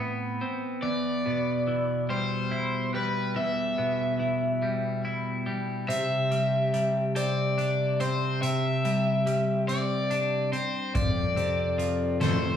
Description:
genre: post-rock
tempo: 48 BPM (dotted quarters)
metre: 6/8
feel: straight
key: unclear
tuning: A4 = 440 Hz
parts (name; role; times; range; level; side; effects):
- twelve-string electric guitar; arpeggios; 0.0-12.6 s; E2 to E4; -29 LUFS; equal; none
- cranked stack guitar; melody; 0.8-12.6 s; B4 to E5; -28 LUFS; left 1 dB; overdrive
- dark bass clarinet; bass; 5.9-12.6 s; F2 to C3; -30 LUFS; equal; none
- soft-mallet drum kit; drums; 5.9-12.4 s; hi-hat, kick drum, snare drum; -33 LUFS; left 1 dB; none
room: wet large studio reverb, RT60 1.0 s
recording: band playing live in one room, small room reverb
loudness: -25 LUFS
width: side -8 dB against mid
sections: 0.0-12.6 A section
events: none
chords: 0.0 Amadd9; 0.8 Em; 5.9 Csus2; 10.9 F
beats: | 0.84 2.10 | 3.36 4.63 | 5.89 7.15 | 8.42 9.68 | 10.94 12.20

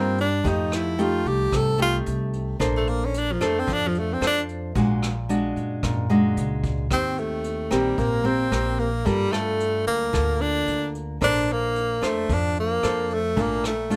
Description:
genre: bossa nova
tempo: 112 BPM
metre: 4/4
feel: straight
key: Bb major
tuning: A4 = 440 Hz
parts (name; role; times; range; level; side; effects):
- breathy tenor saxophone; melody; 0.0-14.0 s; F3 to A4; -26 LUFS; equal; none
- nylon-string guitar; accompaniment; 0.0-14.0 s; Bb2 to C5; -28 LUFS; equal; none
- upright bass; bass; 0.0-14.0 s; Bb1 to G2; -31 LUFS; equal; none
- vintage brush drum kit; drums; 0.2-14.0 s; hi-hat, kick drum, rim click; -34 LUFS; equal; none
room: little or no reverb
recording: none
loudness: -24 LUFS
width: mono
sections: 0.0-6.9 A section; 6.9-14.0 B section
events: tenor saxophone solo 0.0-6.9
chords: 0.4 F9; 2.6 Bbmaj9; 4.8 Bb7alt; 6.9 Eb6; 9.1 Gm9; 11.2 Bbmaj9; 13.4 Gm9/Bb (rootless)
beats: | 0.45 0.99 1.52 2.06 | 2.60 3.14 3.68 4.22 | 4.75 5.29 5.83 6.37 | 6.91 7.45 7.98 8.52 | 9.06 9.60 10.14 10.68 | 11.21 11.75 12.29 12.83 | 13.37 13.90

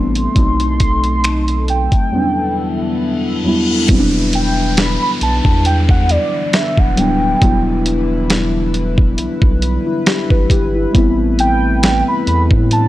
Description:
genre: contemporary R&B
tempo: 68 BPM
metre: 4/4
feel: swing 54% on 16ths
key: E minor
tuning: A4 = 440 Hz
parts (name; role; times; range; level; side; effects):
- warm velvety synth lead; melody; 0.0-12.9 s; D5 to C6; -19 LUFS; right 1 dB; chorus
- muted felt-like synth keys; accompaniment; 0.0-12.9 s; E2 to B4; -18 LUFS; left 1 dB; chorus
- chorused pulse-width pad; sustained chords; 0.0-12.9 s; D3 to B4; -25 LUFS; left 1 dB; sidechain pumping
- saturated sub bass; bass; 0.0-12.9 s; D1 to A2; -18 LUFS; equal; none
- dusty soul sampler-style drum kit; drums; 0.2-12.9 s; finger snaps, hi-hat, kick drum, snare drum; -14 LUFS; equal; none
- reverse cymbal and downlifter; sound effects; 2.9-10.9 s; none; -26 LUFS; left 2 dB; none
room: digital ambience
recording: dry, gritty hardware recording, cassette tape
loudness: -12 LUFS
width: side -15 dB against mid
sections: 0.0-3.9 A section; 3.9-12.9 B section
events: reverse cymbal 2.9-3.9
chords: 0.4 B7b9; 2.1 Em9; 3.9 Em7; 10.9 Am9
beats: | 0.36 1.24 2.13 3.01 | 3.89 4.77 5.66 6.54 | 7.42 8.30 9.19 10.07 | 10.95 11.83 12.71

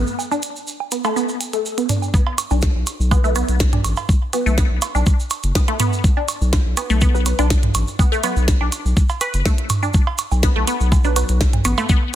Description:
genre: minimal techno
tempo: 123 BPM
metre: 4/4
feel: straight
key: B minor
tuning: A4 = 440 Hz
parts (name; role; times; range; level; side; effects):
- saturated sub bass; bass; 0.0-11.7 s; F#1 to B1; -19 LUFS; equal; sidechain pumping
- tube shaker; percussion; 0.1-12.0 s; none; -31 LUFS; right 3 dB; none
- electronic woodblock, cowbell and toms; percussion; 0.2-11.9 s; none; -25 LUFS; right 4 dB; digital delay
- resonant blip pluck; riff; 0.3-11.9 s; A3 to B4; -23 LUFS; left 1 dB; phaser, sidechain pumping, ping-pong delay
- minimal click drum kit; drums; 0.4-11.8 s; hi-hat, snare drum; -24 LUFS; equal; overdrive
- electronic kick drum; drums; 2.1-12.0 s; none; -17 LUFS; equal; overdrive
- filtered dub chord stab; stabs; 3.2-11.3 s; F#3 to B4; -27 LUFS; right 2 dB; phaser, lush chorus, digital delay
room: digital ambience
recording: dense, heavily limited modern master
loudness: -16 LUFS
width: side -12 dB against mid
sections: 0.0-2.1 A section; 2.1-12.2 B section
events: filter sweep on synth arpeggio sound 0.0-2.1; drop 2.1-12.2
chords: 0.0 B5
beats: | 0.19 0.68 1.16 1.65 | 2.14 2.63 3.11 3.60 | 4.09 4.58 5.07 5.55 | 6.04 6.53 7.02 7.50 | 7.99 8.48 8.97 9.46 | 9.94 10.43 10.92 11.41 | 11.89

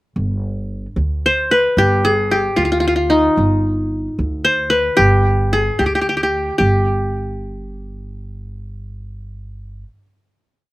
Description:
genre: Arabic maqam ensemble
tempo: 74 BPM (dotted quarters)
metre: 6/8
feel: straight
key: G maqam hijaz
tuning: A4 = 441 Hz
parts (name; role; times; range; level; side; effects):
- upright bass; bass; 0.2-9.8 s; G1 to D2; -20 LUFS; right 1 dB; none
- qanun; melody; 1.3-9.8 s; Eb4 to C5; -15 LUFS; left 1 dB; slapback echo
room: little or no reverb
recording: recorded outdoors, with no room sound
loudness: -14 LUFS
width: side -18 dB against mid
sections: 0.2-6.6 A section; 6.6-9.8 final note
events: none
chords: none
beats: | 0.16 0.96 | 1.76 2.57 | 3.38 4.18 | 4.99 5.79 | 6.60 7.40 | 8.21 9.01

